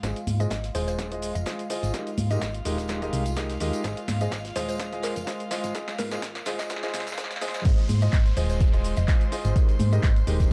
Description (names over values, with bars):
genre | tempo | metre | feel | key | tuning
piano house | 126 BPM | 4/4 | swing 54% on 16ths | Ab major | A4 = 440 Hz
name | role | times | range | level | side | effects
warm chamber violin section | sustained chords | 0.0-10.5 s | F4 to C6 | -42 LUFS | equal | sidechain pumping, low-pass filter
warm concert grand piano | riff | 0.0-10.5 s | Ab3 to Eb5 | -34 LUFS | equal | sidechain pumping, low-pass filter, tape echo
solid FM bass | bass | 0.0-10.5 s | Eb1 to Ab2 | -29 LUFS | equal | sidechain pumping
damped 70s drum kit | drums | 0.0-10.5 s | hi-hat, snare drum | -47 LUFS | equal | none
electronic kick drum | drums | 0.0-10.5 s | none | -25 LUFS | equal | high-pass filter on kick
punchy analog drum machine | drums | 0.0-10.5 s | crash cymbal, handclaps, hi-hat, shaker, snare drum | -38 LUFS | equal | high-pass filter on perc, high-pass filter on hats, high-pass filter on snare, high-pass filter on cymbals
tambourine and congas | percussion | 0.0-10.5 s | none | -41 LUFS | equal | none
mallet-like synth pluck | melody | 0.4-10.1 s | Bb4 to Eb5 | -39 LUFS | equal | chorus, phaser, tape echo
downlifter | sound effects | 7.7-10.5 s | none | -46 LUFS | equal | none
room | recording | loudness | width
light reverb, small room ambience | dark, warm production, high-pass filter | -26 LUFS | mono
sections
0.0-7.7 A section; 7.7-10.5 B section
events
build-up 0.0-7.7; drum fill 0.0-7.7; filter sweep on grand piano 0.0-7.7; filter sweep on violin section 0.0-7.7; filter sweep 0.0-7.7; drop 7.7-10.5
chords
0.0 Ab6; 1.9 Eb; 3.8 Ab6; 9.6 Eb